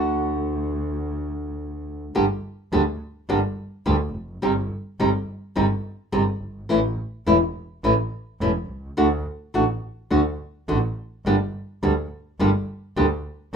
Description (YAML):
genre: tango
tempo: 105 BPM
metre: 4/4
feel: rubato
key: G minor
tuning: A4 = 443 Hz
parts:
  - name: nylon-string guitar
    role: accompaniment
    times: 0.0-13.6 s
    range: C3 to G4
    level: -21 LUFS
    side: equal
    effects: none
  - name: clear double bass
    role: bass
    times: 0.0-13.6 s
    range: E1 to D2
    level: -26 LUFS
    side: right 1 dB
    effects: none
room: light reverb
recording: minimal, uncompressed stereo recording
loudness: -22 LUFS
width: side -6 dB against mid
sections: 0.0-2.1 A section; 2.1-13.6 B section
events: none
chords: 0.0 D; 2.1 Gm; 4.4 Cm/G; 6.7 A; 9.0 D; 11.3 Gm